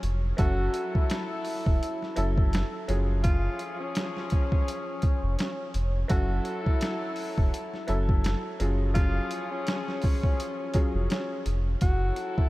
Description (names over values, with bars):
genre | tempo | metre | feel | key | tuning
hip hop, boom-bap hip-hop | 84 BPM | 4/4 | swing 56% on 16ths | F# minor | A4 = 438 Hz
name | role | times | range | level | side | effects
sub bass with octave | bass | 0.0-12.1 s | E1 to F#1 | -27 LUFS | equal | none
boom bap sampler-style drum kit | drums | 0.0-12.5 s | hi-hat, kick drum, snare drum | -27 LUFS | equal | overdrive
breathy tenor saxophone | melody | 0.4-12.5 s | C#4 to F#4 | -34 LUFS | equal | high-pass filter, low-pass filter, diffuse ambient delay
clear upright piano | accompaniment | 0.4-11.4 s | F#3 to A4 | -35 LUFS | equal | cassette tape, high-pass filter, low-pass filter
warm horn section | stabs | 0.4-12.5 s | E#3 to A4 | -37 LUFS | left 2 dB | high-pass filter, low-pass filter, diffuse ambient delay
room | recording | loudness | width
light reverb, small room reverb | none | -25 LUFS | side -18 dB against mid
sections
0.0-12.5 A section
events
none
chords
0.4 F#m7; 2.9 C#/F#; 6.1 F#m7; 8.6 C#/F#; 11.8 F#m7